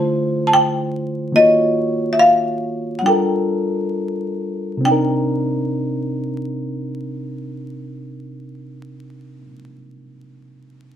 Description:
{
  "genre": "R&B",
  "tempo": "65-74 BPM",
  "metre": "4/4",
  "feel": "swing 54% on 16ths",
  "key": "C dorian",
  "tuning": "A4 = 439 Hz",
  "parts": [
    { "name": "marimba with hard mallets", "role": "melody", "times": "0.0-9.5 s", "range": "Eb5 to A5", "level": "-15 LUFS", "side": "left 1 dB", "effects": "none" },
    { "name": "reed electric piano", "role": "accompaniment", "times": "0.0-11.0 s", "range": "C3 to Db5", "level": "-21 LUFS", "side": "equal", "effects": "overdrive, spring reverb" }
  ],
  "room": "wet studio reverb, RT60 0.8 s",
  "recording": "band playing live in one room, vinyl crackle",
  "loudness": "-16 LUFS",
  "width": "side -9 dB against mid",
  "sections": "0.0-4.8 A section; 4.8-8.6 B section",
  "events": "slowing down 0.0-4.8",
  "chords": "0.0 Dm9; 1.3 Ebm9; 3.0 Gm9; 4.8 Cm9"
}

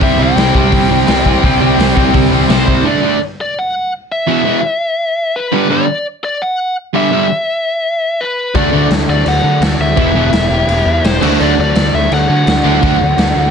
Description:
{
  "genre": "punk rock",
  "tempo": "169 BPM",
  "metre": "4/4",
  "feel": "straight",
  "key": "unclear",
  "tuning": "A4 = 439 Hz",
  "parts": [
    { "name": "biting lead guitar", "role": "melody", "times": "0.0-13.5 s", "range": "B4 to G5", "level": "-16 LUFS", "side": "left 1 dB", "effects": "overdrive" },
    { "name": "distorted electric guitar", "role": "riff", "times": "0.0-13.0 s", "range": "E2 to D4", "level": "-15 LUFS", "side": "right 15 dB", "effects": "distortion" },
    { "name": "overdriven electric guitar", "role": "riff", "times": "0.0-2.9, 8.6-13.5 s", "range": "C3 to G4", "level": "-18 LUFS", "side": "left 1 dB", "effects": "none" },
    { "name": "tight distorted guitar", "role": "riff", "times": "0.0-13.0 s", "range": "E2 to D4", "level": "-17 LUFS", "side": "left 14 dB", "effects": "distortion" },
    { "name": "fuzz picked electric bass", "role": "bass", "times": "0.0-2.8, 8.5-13.5 s", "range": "E1 to D3", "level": "-16 LUFS", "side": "equal", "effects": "overdrive" },
    { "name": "raw garage drum kit", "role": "drums", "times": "0.0-2.8, 8.5-13.3 s", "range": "crash cymbal, hi-hat, kick drum, snare drum", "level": "-16 LUFS", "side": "equal", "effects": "none" }
  ],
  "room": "light reverb",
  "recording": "nothing above 10.8 kHz",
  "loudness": "-10 LUFS",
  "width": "side -6 dB against mid",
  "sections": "0.0-2.9 A section; 2.9-13.5 B section",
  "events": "none",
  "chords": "0.0 C; 2.9 D; 4.3 E5; 5.5 G5; 8.5 D; 10.0 Em; 11.2 D"
}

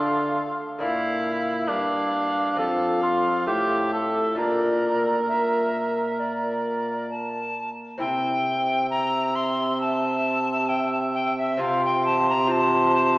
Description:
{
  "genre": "classical, renaissance-style consort dance",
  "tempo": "67 BPM",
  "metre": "4/4",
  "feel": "straight",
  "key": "C mixolydian",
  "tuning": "A4 = 440 Hz",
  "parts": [
    { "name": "bright alto recorder", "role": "melody", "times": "0.0-13.2 s", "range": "D5 to C6", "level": "-26 LUFS", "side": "left 1 dB", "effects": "none" },
    { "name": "warm cor anglais", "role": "second line", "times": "0.0-13.2 s", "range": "D4 to E5", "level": "-25 LUFS", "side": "right 1 dB", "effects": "none" },
    { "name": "lute", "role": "accompaniment", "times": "0.0-13.2 s", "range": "F2 to F4", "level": "-30 LUFS", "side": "left 2 dB", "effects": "none" },
    { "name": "warm trombone", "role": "bass", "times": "0.0-13.2 s", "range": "F2 to D3", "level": "-28 LUFS", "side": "right 1 dB", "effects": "none" }
  ],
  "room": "wet church reverb, RT60 3.5 s",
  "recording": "heard from further back in the room, small speaker sound",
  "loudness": "-21 LUFS",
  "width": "side -20 dB against mid",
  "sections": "0.0-8.0 A section; 8.0-13.2 B section",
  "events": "none",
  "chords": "0.0 Dm; 0.8 Bb; 2.6 F; 4.4 Bb; 8.0 C; 11.6 F/C"
}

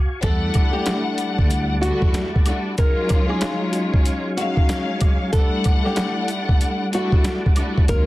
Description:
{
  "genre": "hip hop, boom-bap hip-hop",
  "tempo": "94 BPM",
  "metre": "4/4",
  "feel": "swing 63% on 16ths",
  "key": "unclear",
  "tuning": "A4 = 440 Hz",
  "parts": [
    { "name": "tonewheel organ", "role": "sustained chords", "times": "0.0-8.1 s", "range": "Gb3 to D6", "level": "-31 LUFS", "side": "right 1 dB", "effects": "overdrive, chorus vibrato, slow rotary speaker, high-pass filter, low-pass filter" },
    { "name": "nylon-string guitar", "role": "melody", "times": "0.2-8.1 s", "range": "F#4 to Bb4", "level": "-27 LUFS", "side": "equal", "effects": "high-pass filter, low-pass filter" },
    { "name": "warm studio string section", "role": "accompaniment", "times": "0.2-8.1 s", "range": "Gb3 to F#5", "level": "-24 LUFS", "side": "left 2 dB", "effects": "cassette tape, high-pass filter, low-pass filter" },
    { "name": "upright bass", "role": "bass", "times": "0.2-2.1, 7.9-8.1 s", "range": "D2 to E2", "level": "-25 LUFS", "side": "equal", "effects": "none" },
    { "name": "boom bap sampler-style drum kit", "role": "drums", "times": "0.2-8.1 s", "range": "hi-hat, kick drum, snare drum", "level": "-18 LUFS", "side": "equal", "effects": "none" },
    { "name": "maracas and woodblock", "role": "percussion", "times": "0.2-8.1 s", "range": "none", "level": "-40 LUFS", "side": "right 4 dB", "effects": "none" }
  ],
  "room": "little or no reverb",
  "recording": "dense, heavily limited modern master",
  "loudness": "-18 LUFS",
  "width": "side -17 dB against mid",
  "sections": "0.0-8.1 A section",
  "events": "break 0.0",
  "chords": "0.2 Em11; 2.8 Ebm11; 5.3 Em11"
}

